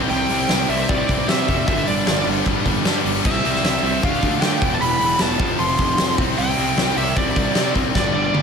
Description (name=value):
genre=hard rock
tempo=153 BPM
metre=4/4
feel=straight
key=unclear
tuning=A4 = 440 Hz
part: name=distorted electric guitar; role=riff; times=0.0-8.4 s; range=E2 to D4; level=-25 LUFS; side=left 12 dB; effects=overdrive
part: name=high-gain distorted guitar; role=riff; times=0.0-8.4 s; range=G2 to F4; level=-28 LUFS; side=equal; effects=distortion, slapback echo
part: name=sludgy distorted guitar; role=riff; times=0.0-8.4 s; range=E2 to D4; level=-26 LUFS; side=right 10 dB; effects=overdrive, slapback echo
part: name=fuzz picked electric bass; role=bass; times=0.0-8.4 s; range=E1 to D3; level=-26 LUFS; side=equal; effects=overdrive
part: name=smooth overdriven lead guitar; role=melody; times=0.1-8.4 s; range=D5 to C6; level=-23 LUFS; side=right 2 dB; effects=slapback echo, digital delay
part: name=huge arena drum kit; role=drums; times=0.1-8.4 s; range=crash cymbal, hi-hat, kick drum, snare drum, toms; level=-21 LUFS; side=left 1 dB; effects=none
room=moderate lush hall reverb, RT60 2.2 s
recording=big arena sound, lossy compression artefacts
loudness=-16 LUFS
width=side -6 dB against mid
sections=0.0-8.4 A section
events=drum fill 8.0-8.4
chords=0.0 C; 1.7 G; 3.2 C; 4.0 Dm; 4.6 Em; 5.4 F; 6.2 C